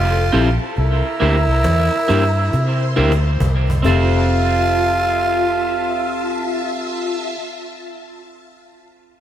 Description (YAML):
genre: lovers rock reggae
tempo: 68 BPM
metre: 4/4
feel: swing 58% on 16ths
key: F major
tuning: A4 = 440 Hz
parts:
  - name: growling tenor saxophone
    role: melody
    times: 0.0-7.3 s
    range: E4 to F4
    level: -21 LUFS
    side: right 2 dB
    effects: tape echo
  - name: phased string machine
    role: second line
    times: 0.0-7.3 s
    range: F4 to C6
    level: -25 LUFS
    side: left 2 dB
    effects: ensemble chorus, phaser
  - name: vintage muted fingered electric bass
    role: bass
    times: 0.0-7.3 s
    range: F1 to C3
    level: -18 LUFS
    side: equal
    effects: none
  - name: cajon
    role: drums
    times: 0.1-4.1 s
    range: none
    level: -27 LUFS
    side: equal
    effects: none
  - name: mellow tine electric piano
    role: accompaniment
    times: 0.3-7.3 s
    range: C4 to E5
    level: -24 LUFS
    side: left 5 dB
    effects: medium stereo tremolo
  - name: electric guitar through a small old amp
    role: stabs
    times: 0.3-7.4 s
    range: Bb3 to C5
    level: -24 LUFS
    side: right 4 dB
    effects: spring reverb, tape echo
room: light reverb, small room ambience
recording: none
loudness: -15 LUFS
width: side -10 dB against mid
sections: 0.0-4.3 A section; 4.3-7.8 B section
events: drum fill 2.5-4.3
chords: 0.0 Fmaj7; 0.8 C7; 3.8 Fmaj7